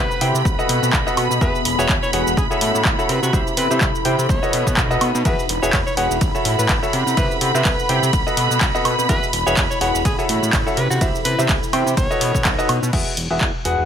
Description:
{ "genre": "piano house", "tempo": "125 BPM", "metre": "4/4", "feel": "swing 56% on 16ths", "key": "unclear", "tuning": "A4 = 439 Hz", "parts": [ { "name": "clear alto saxophone", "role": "melody", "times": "0.0-12.5 s", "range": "F#4 to C#5", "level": "-27 LUFS", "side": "equal", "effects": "digital delay" }, { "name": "warm symphonic violin section", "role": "sustained chords", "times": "0.0-12.9 s", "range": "B5", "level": "-24 LUFS", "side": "right 1 dB", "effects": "sidechain pumping" }, { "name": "clear concert grand piano", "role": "riff", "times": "0.0-13.8 s", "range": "E4 to G5", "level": "-23 LUFS", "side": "equal", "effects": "sidechain pumping" }, { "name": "fat analog bass", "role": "bass", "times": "0.0-13.9 s", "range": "E1 to C3", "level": "-23 LUFS", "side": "equal", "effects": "sidechain pumping" }, { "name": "deep dark ambient pad", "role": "texture", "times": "0.0-13.9 s", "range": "B3 to F#5", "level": "-27 LUFS", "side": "left 1 dB", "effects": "chorus, built-in reverb, sidechain pumping" }, { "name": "punchy analog drum machine", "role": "drums", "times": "0.1-13.8 s", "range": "cabasa, crash cymbal, handclaps, hi-hat, ride cymbal, woodblock", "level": "-23 LUFS", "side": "right 1 dB", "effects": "none" }, { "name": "electronic kick drum", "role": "drums", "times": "0.5-13.5 s", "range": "none", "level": "-22 LUFS", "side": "equal", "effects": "overdrive" } ], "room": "little or no reverb", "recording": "none", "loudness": "-16 LUFS", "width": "side -8 dB against mid", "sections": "0.0-12.9 A section", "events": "drop 0.0-12.9", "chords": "0.5 B7; 1.4 Eadd9; 2.4 A6; 3.1 C; 4.3 B7; 5.3 Eadd9; 6.2 A6; 6.9 C; 8.1 B7; 9.1 Eadd9; 10.1 A6; 10.8 C; 12.0 B7; 12.9 Eadd9", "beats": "0.45 0.93 | 1.41 1.89 2.37 2.85 | 3.33 3.81 4.29 4.77 | 5.25 5.73 6.21 6.69 | 7.17 7.65 8.13 8.61 | 9.09 9.57 10.05 10.53 | 11.01 11.49 11.97 12.45 | 12.93 13.41" }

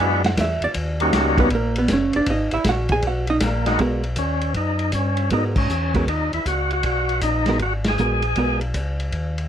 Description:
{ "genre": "soul jazz organ trio", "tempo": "157 BPM", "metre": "4/4", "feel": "swing 66% on 8ths", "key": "G# minor", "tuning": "A4 = 438 Hz", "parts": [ { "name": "percussive tonewheel organ", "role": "melody", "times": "0.0-8.6 s", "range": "G3 to G#4", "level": "-22 LUFS", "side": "left 1 dB", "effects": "slow rotary speaker, overdrive" }, { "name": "hollow-body jazz guitar", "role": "accompaniment", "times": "0.0-8.6 s", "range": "G#3 to G#5", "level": "-21 LUFS", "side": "right 3 dB", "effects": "none" }, { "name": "mellow tonewheel organ", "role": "bass", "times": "0.0-9.5 s", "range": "F#1 to G#2", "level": "-24 LUFS", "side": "equal", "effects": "slow rotary speaker" }, { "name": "vintage drum kit", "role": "drums", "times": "0.2-9.4 s", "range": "crash cymbal, hi-hat, kick drum, ride cymbal, snare drum", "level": "-25 LUFS", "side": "left 1 dB", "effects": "none" } ], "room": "light reverb", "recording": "none", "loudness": "-18 LUFS", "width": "side -9 dB against mid", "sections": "0.0-3.8 A section; 3.8-9.5 B section", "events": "hollow-body jazz guitar solo 0.0-3.8; band accent 5.5, 7.8", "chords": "0.0 E7; 0.8 D#7#9; 2.3 G#m9", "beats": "0.00 0.38 | 0.76 1.14 1.51 1.89 | 2.27 2.65 3.03 3.41 | 3.79 4.17 4.56 4.94 | 5.32 5.70 6.08 6.46 | 6.84 7.23 7.61 7.99 | 8.37 8.75 9.13" }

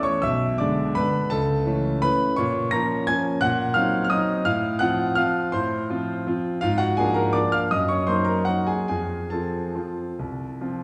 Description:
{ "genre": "classical, piano waltz", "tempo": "132-182 BPM", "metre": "3/4", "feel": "rubato", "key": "unclear", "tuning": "A4 = 440 Hz", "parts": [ { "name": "clear grand piano", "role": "solo", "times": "0.0-10.8 s", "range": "B1 to Bb6", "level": "-23 LUFS", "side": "equal", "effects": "none" } ], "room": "wet recital hall reverb, RT60 1.5 s", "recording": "heard from further back in the room", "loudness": "-23 LUFS", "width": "mono", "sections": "0.0-10.8 A section", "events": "none", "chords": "0.2 G#dim/B; 1.3 A/C#; 2.4 Bbm; 3.4 Cm7b5/Bb; 4.5 F/A; 6.6 Bb7/Ab; 7.7 Ebm/Gb; 8.9 F", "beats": "| 0.23 0.60 0.97 | 1.31 1.66 2.01 | 2.36 2.71 3.07 | 3.41 3.75 4.11 | 4.46 4.80 5.18 | 5.55 5.90 6.26 | 6.62 6.98 7.35 | 7.73 8.09 8.47 | 8.89 9.32 9.76 | 10.20 10.61" }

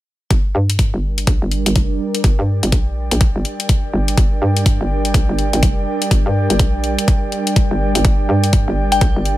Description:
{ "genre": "bass house", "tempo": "124 BPM", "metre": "4/4", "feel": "swing 61% on 16ths", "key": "G minor", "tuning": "A4 = 444 Hz", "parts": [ { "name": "sweeping resonant pad", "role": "sustained chords", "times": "0.3-9.4 s", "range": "G3 to Bb4", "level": "-24 LUFS", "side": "right 3 dB", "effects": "chorus, sidechain pumping" }, { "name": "hollow knocking FM bass", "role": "bass", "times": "0.3-9.4 s", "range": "F1 to G2", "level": "-18 LUFS", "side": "equal", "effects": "overdrive, sidechain pumping" }, { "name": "electronic hi-hat", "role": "drums", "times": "0.3-9.4 s", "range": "none", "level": "-22 LUFS", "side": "left 4 dB", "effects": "studio ambience" }, { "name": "electronic kick drum", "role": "drums", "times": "0.3-9.1 s", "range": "none", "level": "-15 LUFS", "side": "equal", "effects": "overdrive, studio ambience" }, { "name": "airy breathy pad", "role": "texture", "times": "0.3-9.4 s", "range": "G4 to G5", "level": "-25 LUFS", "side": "equal", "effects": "chorus, sidechain pumping" }, { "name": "glassy synth bell", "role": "melody", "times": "8.9-9.1 s", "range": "G5", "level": "-18 LUFS", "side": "left 4 dB", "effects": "chorus, tremolo" } ], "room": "little or no reverb", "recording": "none", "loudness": "-14 LUFS", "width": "side -15 dB against mid", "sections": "0.3-9.4 A section", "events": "fade-in on analog synth pad 0.3-9.4", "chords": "0.3 Gm", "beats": "| 0.30 0.79 1.27 1.76 | 2.24 2.72 3.21 3.69 | 4.18 4.66 5.14 5.63 | 6.11 6.59 7.08 7.56 | 8.05 8.53 9.02" }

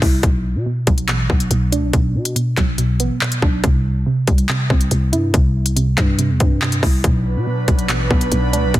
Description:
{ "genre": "hip hop, drill", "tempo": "141 BPM", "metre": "4/4", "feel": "half-time", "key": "B phrygian", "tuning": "A4 = 439 Hz", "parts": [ { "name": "soft round pluck", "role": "accompaniment", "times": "0.0-8.8 s", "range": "B2 to E4", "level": "-19 LUFS", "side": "right 1 dB", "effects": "chorus, low-pass filter" }, { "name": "growling 808-style bass", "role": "bass", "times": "0.0-8.8 s", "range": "A1 to B2", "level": "-20 LUFS", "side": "equal", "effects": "none" }, { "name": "drill drum kit", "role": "drums", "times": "0.0-8.8 s", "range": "handclaps, hi-hat, kick drum", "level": "-18 LUFS", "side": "equal", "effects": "none" }, { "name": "airy breathy pad", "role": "sustained chords", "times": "7.0-8.8 s", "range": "F#3 to B4", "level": "-23 LUFS", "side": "right 2 dB", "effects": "chorus" } ], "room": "digital ambience", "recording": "dense, heavily limited modern master", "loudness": "-15 LUFS", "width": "side -15 dB against mid", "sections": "0.0-8.8 A section", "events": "filter sweep on synth pluck 0.0-7.0", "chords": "0.2 Bm; 3.6 C; 7.0 Bm", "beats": "| 0.23 0.66 1.08 1.51 | 1.93 2.36 2.79 3.21 | 3.64 4.06 4.49 4.91 | 5.34 5.76 6.19 6.62 | 7.04 7.47 7.89 8.32 | 8.74" }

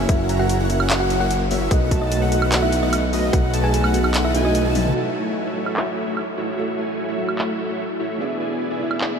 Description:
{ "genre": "future bass", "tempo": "148 BPM", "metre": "4/4", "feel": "half-time", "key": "F# minor", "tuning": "A4 = 440 Hz", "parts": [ { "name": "felt-muted upright piano", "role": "accompaniment", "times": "0.0-9.2 s", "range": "E3 to E5", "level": "-28 LUFS", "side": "right 2 dB", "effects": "wide subtle chorus, sidechain pumping, tape echo" }, { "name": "airy dreamy lead", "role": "arpeggios", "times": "0.0-4.9 s", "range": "D#5 to A#5", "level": "-32 LUFS", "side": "left 1 dB", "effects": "chorus, sidechain pumping" }, { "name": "dense compressed supersaw", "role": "riff", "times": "0.0-9.2 s", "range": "A3 to A#5", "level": "-24 LUFS", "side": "equal", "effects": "sidechain pumping, low-pass filter, tape echo" }, { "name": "fat analog bass", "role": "bass", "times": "0.0-4.9 s", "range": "F#1 to B1", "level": "-22 LUFS", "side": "equal", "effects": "sidechain pumping" }, { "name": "thumb-piano-like synth pluck", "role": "melody", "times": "0.1-4.9 s", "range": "D#4 to G#5", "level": "-26 LUFS", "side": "equal", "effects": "chorus, sidechain pumping, tape echo" }, { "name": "dubstep drum kit", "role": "drums", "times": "0.1-9.1 s", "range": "crash cymbal, handclaps, hi-hat, toms, woodblock", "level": "-27 LUFS", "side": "equal", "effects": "overdrive, low-pass filter on snare, low-pass filter on hats, low-pass filter on perc, low-pass filter on toms, low-pass filter on cymbals" }, { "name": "electronic kick drum", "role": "drums", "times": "0.1-3.4 s", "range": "none", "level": "-18 LUFS", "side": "equal", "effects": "overdrive" } ], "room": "wet huge ambient reverb, RT60 8.0 s", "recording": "dreamy mix soaked in reverb", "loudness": "-18 LUFS", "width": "side -6 dB against mid", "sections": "0.0-5.0 A section; 5.0-9.2 B section", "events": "drop 0.0-5.0; drum fill 4.8; filter sweep on drum 5.0-9.2", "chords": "0.0 F#7; 1.7 B7; 5.0 F#m7; 8.2 E7", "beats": "| 0.09 0.49 0.90 1.30 | 1.71 2.12 2.52 2.93 | 3.33 3.74 4.14 4.55 | 4.95 5.36 5.76 6.17 | 6.58 6.98 7.39 7.79 | 8.20 8.60 9.01" }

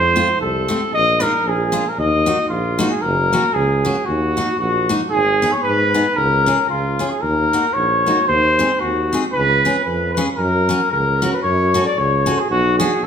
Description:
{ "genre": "alpine folk, alpine dance band", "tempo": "114 BPM", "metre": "2/4", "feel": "swing 55% on 8ths, rubato", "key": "Eb minor, F# major from 3.0 s", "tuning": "A4 = 437 Hz", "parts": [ { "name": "warm trumpet", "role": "melody", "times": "0.0-13.1 s", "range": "F4 to Eb5", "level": "-17 LUFS", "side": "equal", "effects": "none" }, { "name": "warm tuba", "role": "bass", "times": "0.0-13.1 s", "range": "F#1 to G#2", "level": "-21 LUFS", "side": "equal", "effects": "none" }, { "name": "picked steel-string acoustic guitar", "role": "accompaniment", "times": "0.2-12.9 s", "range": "A3 to A#4", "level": "-23 LUFS", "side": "left 1 dB", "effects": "none" } ], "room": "wet large studio reverb, RT60 1.5 s", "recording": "band playing live in one room", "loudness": "-15 LUFS", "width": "side -7 dB against mid", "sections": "0.0-3.0 A section; 3.0-11.5 B section; 11.5-13.1 C section", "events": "none", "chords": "0.0 F; 0.9 Bbsus4; 1.4 Bb7; 2.0 Ebm; 3.0 F#; 4.1 D#m; 5.1 G#m; 6.2 C#; 7.2 D#m; 8.3 G#/D#; 9.4 C#7; 10.4 F#; 11.5 F#m; 12.5 Bm", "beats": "0.40 | 0.92 1.44 | 1.96 2.50 | 3.03 3.55 | 4.08 4.60 | 5.12 5.64 | 6.17 6.70 | 7.24 7.77 | 8.30 8.83 | 9.36 9.87 | 10.39 10.92 | 11.45 11.98 | 12.51 13.03" }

